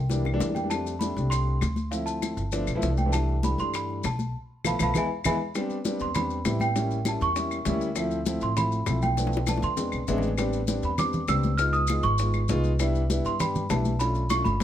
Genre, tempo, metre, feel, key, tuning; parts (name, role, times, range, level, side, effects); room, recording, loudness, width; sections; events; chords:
Afro-Cuban jazz; 199 BPM; 4/4; straight; C major, A minor from 5.5 s; A4 = 440 Hz
celesta; melody; 0.0-14.6 s; E5 to E#6; -30 LUFS; right 2 dB
upright bass; bass; 0.0-14.6 s; G1 to G2; -28 LUFS; equal
dark concert grand piano; accompaniment; 0.1-14.6 s; E3 to G#5; -29 LUFS; left 1 dB
bongos; percussion; 0.1-14.6 s; -36 LUFS; left 6 dB
congas; percussion; 0.1-14.6 s; -32 LUFS; left 1 dB
maracas; percussion; 0.1-14.6 s; -39 LUFS; left 8 dB
claves; percussion; 0.3-14.5 s; -37 LUFS; left 8 dB
light reverb; close, detailed microphones; -24 LUFS; side -11 dB against mid
0.0-5.5 A section; 5.5-14.6 B section
drum fill 0.1-0.7, 5.1-5.5, 9.2-10.4, 14.5; band accent 4.3-5.5; grand piano fill 9.9-10.4
0.1 C7; 0.7 F69; 1.9 Dm7; 2.5 G7; 3.1 C6; 4.3 Asus2/B; 4.9 E; 5.5 Am11; 6.8 A7b9; 8.0 Dm9; 9.2 Bm7b5; 9.8 E7b13; 10.4 Am11; 11.6 C#9; 12.8 Cmaj7; 14.0 Bm7b5